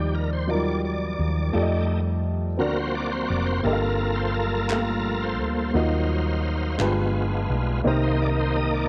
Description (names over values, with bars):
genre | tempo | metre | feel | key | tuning
slow gospel | 57 BPM (dotted quarters) | 6/8 | straight | unclear | A4 = 440 Hz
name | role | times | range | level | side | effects
warm baby grand piano | accompaniment | 0.0-8.9 s | G2 to F5 | -30 LUFS | equal | none
bright tonewheel organ | sustained chords | 0.0-8.9 s | Eb3 to F5 | -30 LUFS | equal | slow rotary speaker, overdrive, chorus vibrato
deep dark ambient pad | sustained chords | 0.0-8.9 s | Eb3 to F5 | -36 LUFS | equal | none
hollow-body short-scale fingered electric bass | bass | 0.0-8.9 s | E#1 to F2 | -28 LUFS | equal | none
group handclap | percussion | 4.7-7.1 s | none | -36 LUFS | equal | none
room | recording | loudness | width
light reverb, small room ambience | worn, warbling old tape, cassette tape, warbly pitch drift | -24 LUFS | mono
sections
0.0-8.9 A section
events
tonewheel organ solo 0.0-8.9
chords
0.0 Ebmaj9; 1.5 F9; 2.6 D7alt; 3.6 Gm9; 5.7 Ebmadd9; 6.8 G7b9; 7.9 Cm7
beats
0.49 | 1.54 2.59 | 3.65 4.70 | 5.75 6.80 | 7.85